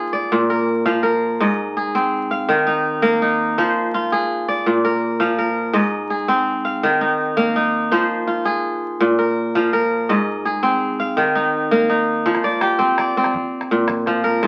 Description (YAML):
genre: west african traditional, West African string and xylophone music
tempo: 110 BPM (dotted quarters)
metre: 12/8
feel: straight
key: unclear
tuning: A4 = 435 Hz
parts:
  - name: kora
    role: arpeggios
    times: 0.0-14.5 s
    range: Ab2 to F5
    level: -19 LUFS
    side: equal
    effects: none
  - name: calabash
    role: percussion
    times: 12.3-14.5 s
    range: none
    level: -29 LUFS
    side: equal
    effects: none
room: moderate studio reverb, RT60 0.5 s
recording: very old 78 rpm record, vinyl crackle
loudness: -19 LUFS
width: mono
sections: 0.0-12.3 A section; 12.3-14.5 B section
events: none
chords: 0.3 Bb; 1.4 Ab; 2.5 Eb5; 3.6 Fm; 4.7 Bb; 5.7 Ab; 6.8 Eb5; 7.9 Fm; 9.0 Bb5; 10.1 Ab; 11.2 Eb5; 12.3 F5; 13.3 Bb